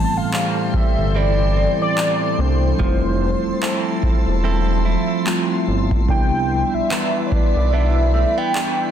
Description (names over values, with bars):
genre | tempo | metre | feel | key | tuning
contemporary R&B | 73 BPM | 4/4 | swing 58% on 16ths | A minor | A4 = 442 Hz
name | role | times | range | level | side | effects
warm velvety synth lead | melody | 0.0-8.9 s | C5 to A5 | -22 LUFS | equal | chorus, digital delay
mellow tine electric piano | accompaniment | 0.0-8.9 s | E3 to F4 | -24 LUFS | left 1 dB | medium stereo tremolo
glassy FM pad | sustained chords | 0.0-8.9 s | E3 to C6 | -26 LUFS | equal | ensemble chorus, built-in reverb
direct-recorded clean electric guitar | arpeggios | 0.0-8.9 s | A2 to A4 | -27 LUFS | right 7 dB | digital delay
smooth synth bass | bass | 0.0-8.3 s | E1 to C2 | -20 LUFS | equal | none
booming analog drum machine | drums | 0.3-8.8 s | handclaps, kick drum | -21 LUFS | equal | none
room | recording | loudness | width
light reverb, digital ambience | dense, heavily limited modern master | -16 LUFS | side -9 dB against mid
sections
0.0-8.9 A section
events
none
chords
0.0 Am7; 2.8 Fmaj7; 6.1 Cmaj9